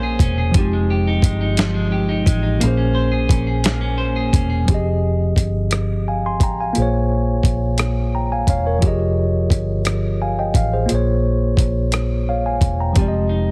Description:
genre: slow six-eight R&B.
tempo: 58 BPM (dotted quarters).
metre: 6/8.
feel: straight.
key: F minor.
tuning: A4 = 440 Hz.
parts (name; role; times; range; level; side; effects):
clean electric guitar; second line; 0.0-5.2, 13.0-13.5 s; F3 to C5; -27 LUFS; equal; none.
mellow tine electric piano; accompaniment; 0.0-13.5 s; Bb2 to C6; -24 LUFS; equal; none.
vintage muted fingered electric bass; bass; 0.0-13.5 s; E1 to Bb1; -22 LUFS; equal; none.
dusty soul sampler-style drum kit; drums; 0.2-13.1 s; hi-hat, kick drum, rim click, snare drum; -19 LUFS; equal; none.
room: little or no reverb.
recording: heavily compressed radio sound.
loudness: -19 LUFS.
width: mono.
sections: 0.0-4.7 A section; 4.7-13.5 B section.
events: none.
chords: 0.0 Bbm9; 0.5 Fm9; 2.6 Bbm9; 4.7 Fm9; 6.8 Bbm9; 8.8 Fm9; 10.9 Bbm9; 13.0 Fm9.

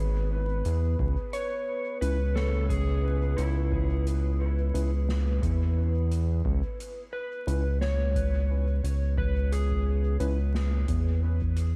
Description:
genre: ambient dub.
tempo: 88 BPM.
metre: 4/4.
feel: swing 56% on 16ths.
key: C# minor.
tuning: A4 = 440 Hz.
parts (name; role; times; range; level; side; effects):
deep dark ambient pad; sustained chords; 0.0-11.8 s; B4; -42 LUFS; equal; chorus, built-in reverb.
round analog bass; bass; 0.0-11.8 s; G#1 to E2; -28 LUFS; equal; none.
soft-mallet drum kit; drums; 0.6-11.7 s; hi-hat, snare drum; -44 LUFS; equal; dub echo.
electronic kick drum; drums; 1.0-11.5 s; none; -35 LUFS; equal; none.
electric slide guitar; melody; 1.3-10.2 s; E4 to C#5; -39 LUFS; equal; dub echo.
mellow tine electric piano; stabs; 2.0-10.4 s; C#4 to B4; -43 LUFS; equal; none.
room: studio reverb.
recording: vinyl crackle.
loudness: -28 LUFS.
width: mono.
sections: 0.0-11.8 A section.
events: none.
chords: 0.0 C#m7.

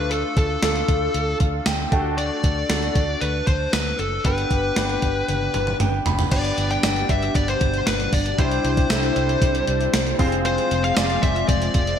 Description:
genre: 1980s-style pop.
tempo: 116 BPM.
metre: 4/4.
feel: straight.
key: unclear.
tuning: A4 = 439 Hz.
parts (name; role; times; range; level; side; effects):
fuzz lead guitar; melody; 0.0-12.0 s; A4 to G5; -25 LUFS; left 2 dB; distortion.
clear concert grand piano; accompaniment; 0.0-12.0 s; A3 to B5; -26 LUFS; equal; analog chorus.
vintage muted fingered electric bass; bass; 0.0-11.9 s; F1 to D2; -26 LUFS; equal; none.
gated 80s digital drum machine; drums; 0.1-12.0 s; crash cymbal, hi-hat, kick drum, snare drum, toms; -22 LUFS; equal; gated reverb, gated reverb snare.
soft string machine; sustained chords; 6.3-12.0 s; B2 to E4; -28 LUFS; left 2 dB; ensemble chorus.
room: moderate lush hall reverb, RT60 1.7 s.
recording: bright 1980s-style digital production.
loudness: -18 LUFS.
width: side -8 dB against mid.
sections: 0.0-6.3 A section; 6.3-12.0 B section.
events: grand piano fill 1.1-2.2, 5.5-6.3; drum fill 5.3-6.3.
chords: 0.0 Dm; 1.9 D; 4.2 G; 8.4 Cadd9; 10.2 Fm.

